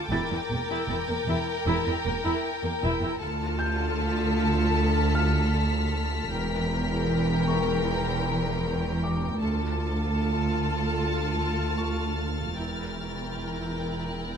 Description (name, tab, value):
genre	cinematic, suspense film score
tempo	77 BPM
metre	4/4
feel	straight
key	unclear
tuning	A4 = 441 Hz
part	warm symphonic violin section	melody	0.0-14.4 s	G5 to A5	-35 LUFS	left 2 dB	none
part	rich symphonic violin section	second line	0.0-14.4 s	A4 to Bb4	-32 LUFS	left 5 dB	none
part	warm symphonic violin section	texture	0.0-14.4 s	D6 to B6	-39 LUFS	left 2 dB	none
part	warm symphonic viola section	accompaniment	0.1-14.4 s	E3 to F4	-33 LUFS	right 1 dB	none
part	warm symphonic cello section	bass	0.1-14.4 s	D2 to E2	-30 LUFS	right 2 dB	none
part	warm symphonic double bass section	bass	0.1-14.4 s	E1 to D2	-29 LUFS	right 2 dB	none
part	felt-muted upright piano	texture	0.1-14.4 s	F5 to A6	-39 LUFS	left 2 dB	none
room	light reverb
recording	none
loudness	-24 LUFS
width	side -7 dB against mid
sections	0.0-14.4 A section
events	none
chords	0.1 Edim; 3.2 Dm; 6.3 Edim; 9.4 Dm; 12.6 Edim